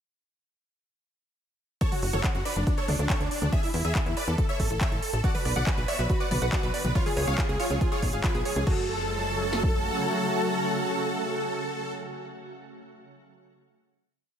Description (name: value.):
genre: uplifting trance.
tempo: 140 BPM.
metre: 4/4.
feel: straight.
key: F# minor.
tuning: A4 = 440 Hz.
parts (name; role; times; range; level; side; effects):
big supersaw lead; melody; 1.8-11.9 s; D4 to F#5; -30 LUFS; equal; analog chorus, sidechain pumping, diffuse ambient delay.
big-room dance drum kit; drums; 1.8-8.8 s; crash cymbal, handclaps, hi-hat, toms; -34 LUFS; equal; none.
punchy analog drum machine; drums; 1.8-9.7 s; kick drum, snare drum; -27 LUFS; equal; none.
tight sequencer bass; bass; 2.0-9.9 s; F#1 to E2; -29 LUFS; equal; sidechain pumping.
shimmering ambient pad; sustained chords; 6.0-11.9 s; C#3 to F#4; -32 LUFS; equal; chorus, built-in reverb, sidechain pumping.
analog pluck; arpeggios; 5.2-8.9 s; E#4 to F#5; -34 LUFS; right 2 dB; chorus, sidechain pumping, diffuse ambient delay.
room: moderate plate reverb, RT60 1.4 s.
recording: dreamy mix soaked in reverb.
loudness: -24 LUFS.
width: side -8 dB against mid.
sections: 1.8-8.7 drop; 8.7-12.1 final chord.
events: drop 1.8-8.7.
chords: 1.8 N.C.; 2.7 D5; 3.5 N.C.; 4.4 A; 5.2 Bm; 7.0 C#; 8.7 F#m.